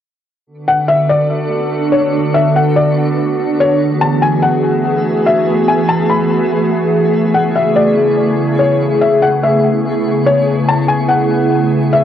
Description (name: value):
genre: hip hop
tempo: 144 BPM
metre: 4/4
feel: half-time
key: unclear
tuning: A4 = 445 Hz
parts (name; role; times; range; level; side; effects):
- glassy FM pad; sustained chords; 0.6-12.0 s; C#3 to A4; -13 LUFS; right 1 dB; ensemble chorus, built-in reverb, cassette tape
- twinkling granular texture; texture; 0.7-12.0 s; A3 to C#6; -27 LUFS; left 1 dB; built-in reverb, cassette tape
- felt-muted upright piano; melody; 0.7-12.0 s; C#5 to B5; -15 LUFS; left 3 dB; low-pass filter, cassette tape, tape echo
room: light reverb, studio ambience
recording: home recording on cassette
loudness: -11 LUFS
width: side -10 dB against mid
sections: 0.5-12.0 A section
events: none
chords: 0.5 Bm9; 3.8 F#m11; 7.1 Amaj9